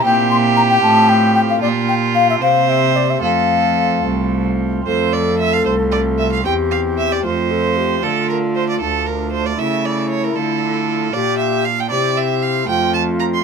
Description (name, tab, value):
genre	classical, baroque-style sonata movement with continuo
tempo	77 BPM (dotted quarters)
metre	6/8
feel	straight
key	F major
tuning	A4 = 440 Hz
part	mellow baroque flute	melody	0.0-13.4 s	D4 to C6	-18 LUFS	left 5 dB	none
part	rich violin	second line	0.0-13.4 s	F4 to C6	-19 LUFS	right 8 dB	none
part	pipe organ, sparkling flutes	accompaniment	0.0-13.4 s	C2 to G4	-22 LUFS	right 1 dB	none
part	rich cello	bass	0.0-13.4 s	C2 to D3	-21 LUFS	right 2 dB	none
room	moderate small room reverb, RT60 0.5 s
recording	minimal, uncompressed stereo recording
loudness	-14 LUFS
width	side -6 dB against mid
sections	0.0-4.9 A section; 4.9-13.4 B section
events	none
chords	0.0 C7/Bb; 0.8 F/A; 1.6 Gm7/Bb; 2.4 C5; 3.2 F; 6.4 C/E; 7.2 F; 8.0 Dm; 9.6 A/C#; 10.4 Dm; 11.1 Gm7/Bb; 11.9 C; 12.7 F